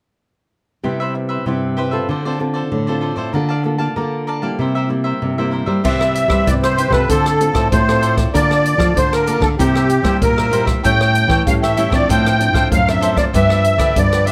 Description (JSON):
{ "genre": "samba and choro", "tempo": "96 BPM", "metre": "4/4", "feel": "straight", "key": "C major", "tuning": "A4 = 440 Hz", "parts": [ { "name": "cavaquinho", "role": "accompaniment", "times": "0.8-14.3 s", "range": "D4 to A5", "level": "-28 LUFS", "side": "equal", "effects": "none" }, { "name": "nylon-string guitar", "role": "accompaniment", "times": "0.8-14.3 s", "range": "G2 to A4", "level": "-25 LUFS", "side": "equal", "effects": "none" }, { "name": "nylon-string guitar", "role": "bass", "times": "0.8-14.3 s", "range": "F#2 to G3", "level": "-21 LUFS", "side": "equal", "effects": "none" }, { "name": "open jazz drum kit", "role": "drums", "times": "5.8-14.3 s", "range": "crash cymbal, hi-hat, kick drum, rim click", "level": "-22 LUFS", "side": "equal", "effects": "none" }, { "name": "musette accordion", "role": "melody", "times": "5.9-14.3 s", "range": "G4 to G5", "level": "-19 LUFS", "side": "equal", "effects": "none" } ], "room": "light reverb", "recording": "none", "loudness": "-16 LUFS", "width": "mono", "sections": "0.8-5.8 A section; 5.8-14.3 B section", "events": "none", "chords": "0.8 Cmaj7; 2.1 Dm7; 3.3 Bbmaj7/D; 4.6 C7; 5.8 Cmaj7; 7.1 Dm7; 8.3 Bbmaj7/D; 9.6 C7; 10.8 A7; 12.1 Dm7/A; 13.3 G7" }